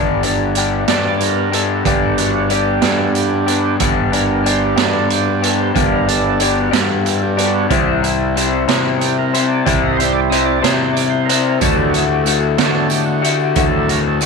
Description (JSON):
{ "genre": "psychedelic rock", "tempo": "62 BPM (dotted quarters)", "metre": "6/8", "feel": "straight", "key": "unclear", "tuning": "A4 = 440 Hz", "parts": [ { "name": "overdriven tonewheel organ", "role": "sustained chords", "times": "0.0-14.2 s", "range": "F#3 to Eb5", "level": "-20 LUFS", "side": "right 13 dB", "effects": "slow rotary speaker" }, { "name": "electric guitar through a small old amp", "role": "riff", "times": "0.0-14.3 s", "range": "D2 to C5", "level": "-17 LUFS", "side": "left 13 dB", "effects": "flanger" }, { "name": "fuzz fingered electric bass", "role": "bass", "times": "0.0-14.3 s", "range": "G1 to D3", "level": "-21 LUFS", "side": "right 1 dB", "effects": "overdrive" }, { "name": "raw garage drum kit", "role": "drums", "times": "0.2-14.3 s", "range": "hi-hat, kick drum, snare drum", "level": "-20 LUFS", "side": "right 8 dB", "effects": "none" }, { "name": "tambourine", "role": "percussion", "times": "11.6-14.3 s", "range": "none", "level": "-31 LUFS", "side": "right 17 dB", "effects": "none" } ], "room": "light reverb, studio reverb", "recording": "1960s-style stereo with parts hard left and right", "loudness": "-13 LUFS", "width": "side -4 dB against mid", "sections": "0.0-14.3 A section", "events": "tonewheel organ solo 0.0-14.3", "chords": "0.0 G; 7.7 C; 11.6 D" }